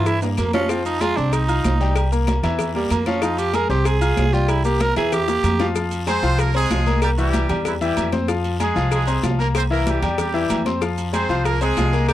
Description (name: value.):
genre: latin, salsa.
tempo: 190 BPM.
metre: 4/4.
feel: straight.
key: F minor.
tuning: A4 = 441 Hz.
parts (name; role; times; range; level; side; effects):
raspy tenor saxophone; melody; 0.0-5.7 s; G3 to Bb4; -22 LUFS; right 4 dB; none.
bright grand piano; accompaniment; 0.0-12.1 s; E3 to F6; -24 LUFS; left 5 dB; none.
upright bass; bass; 0.0-12.1 s; C2 to G2; -22 LUFS; equal; none.
agogo bells and timbales; percussion; 0.1-12.1 s; none; -30 LUFS; right 7 dB; none.
congas; percussion; 0.1-12.1 s; none; -28 LUFS; equal; none.
cowbell and bongos; percussion; 0.1-12.1 s; none; -29 LUFS; left 6 dB; none.
guiro; percussion; 0.1-12.1 s; none; -39 LUFS; left 6 dB; none.
maracas; percussion; 0.1-12.1 s; none; -39 LUFS; right 11 dB; none.
bright horn section; melody; 6.1-12.1 s; E3 to C5; -24 LUFS; right 2 dB; none.
room: little or no reverb.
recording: dry, close 1970s-style studio recording.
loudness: -17 LUFS.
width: side -13 dB against mid.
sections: 0.0-5.8 A section; 5.8-12.1 B section.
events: tenor saxophone solo 0.0-5.8; drum fill 0.2-0.7, 5.3-5.8.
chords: 0.0 C7 (rootless); 0.7 Fm7; 2.0 C7; 3.2 Fm; 4.5 C7; 5.8 Fm; 7.0 C7; 8.3 Fm; 9.6 C7; 10.8 Fm.